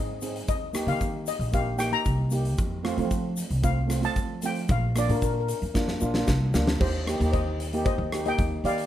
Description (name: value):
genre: calypso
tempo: 114 BPM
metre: 4/4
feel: straight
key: Eb major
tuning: A4 = 440 Hz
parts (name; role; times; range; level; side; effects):
- steel pan; melody; 0.0-8.8 s; G4 to Bb5; -30 LUFS; left 3 dB; none
- steel pan; accompaniment; 0.0-8.9 s; A3 to Ab4; -30 LUFS; right 2 dB; none
- upright bass; bass; 0.0-8.9 s; Bb1 to F3; -28 LUFS; equal; none
- big rock drum kit; drums; 0.2-8.9 s; crash cymbal, hi-hat, kick drum, rim click, snare drum; -30 LUFS; equal; none
- egg shaker; percussion; 0.2-6.7 s; none; -40 LUFS; left 6 dB; none
room: little or no reverb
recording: close, detailed microphones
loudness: -24 LUFS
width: side -12 dB against mid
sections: 0.0-6.8 A section; 6.8-8.9 B section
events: steel pan solo 0.0-6.8; drum fill 5.7-6.8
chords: 0.5 Eb6; 2.6 F; 4.7 Bb; 6.8 Eb6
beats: | 0.47 1.00 1.53 2.06 | 2.58 3.11 3.64 4.16 | 4.69 5.22 5.75 6.27 | 6.80 7.33 7.86 8.38